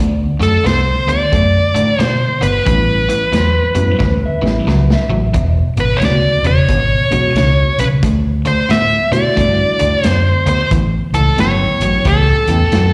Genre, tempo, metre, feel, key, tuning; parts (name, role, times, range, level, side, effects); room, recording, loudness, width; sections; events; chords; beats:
electric blues shuffle; 90 BPM; 4/4; swing 63% on 8ths; A mixolydian; A4 = 437 Hz
electric guitar through a small old amp; second line; 0.0-5.6 s; C5 to E5; -29 LUFS; equal; vibrato effect, slapback echo
biting overdriven guitar; riff; 0.0-12.9 s; E2 to B3; -21 LUFS; equal
fingered electric bass; bass; 0.0-12.9 s; E1 to B2; -18 LUFS; equal
dark smooth lead guitar; melody; 0.4-12.9 s; A4 to E5; -18 LUFS; equal; overdrive, slapback echo
crunchy breakbeat drum kit; drums; 0.4-12.9 s; hi-hat, kick drum, snare drum; -22 LUFS; equal
reed electric piano; accompaniment; 2.7-12.9 s; G3 to G5; -24 LUFS; equal; fast tremolo, slapback echo
light reverb; live gig heard through the venue's PA, recital hall reverb; -14 LUFS; mono
0.0-12.9 A section
drum fill 4.0-5.3
0.0 D; 2.7 A9; 5.3 E9; 8.0 Dadd9; 10.7 A9
0.66 1.33 2.00 | 2.67 3.33 4.01 4.68 | 5.35 6.02 6.69 7.36 | 8.03 8.70 9.37 10.04 | 10.71 11.38 12.05 12.72